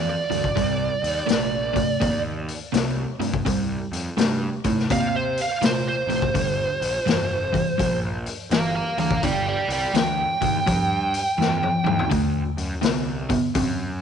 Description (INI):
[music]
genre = blues rock power trio and southern rock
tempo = 83 BPM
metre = 4/4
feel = swing 65% on 8ths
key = G minor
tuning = A4 = 438 Hz
[part]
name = fuzz lead guitar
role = melody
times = 0.0-12.1 s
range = C5 to Bb5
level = -24 LUFS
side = right 2 dB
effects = distortion, slapback echo
[part]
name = crunchy overdriven guitar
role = riff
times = 0.0-14.0 s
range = G2 to C4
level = -25 LUFS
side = right 1 dB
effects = none
[part]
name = fuzz picked electric bass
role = bass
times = 0.0-14.0 s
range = F1 to C3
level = -31 LUFS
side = equal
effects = overdrive
[part]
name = raw garage drum kit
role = drums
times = 0.3-13.8 s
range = hi-hat, kick drum, snare drum, toms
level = -26 LUFS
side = left 4 dB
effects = none
[sound]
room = light reverb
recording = 1960s-style stereo, nothing above 10.9 kHz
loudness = -20 LUFS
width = side -8 dB against mid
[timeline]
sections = 0.0-14.0 A section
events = drum fill 11.4-12.1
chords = 0.0 G7(no3); 0.6 C7(no3); 6.3 G7(no3); 12.1 D7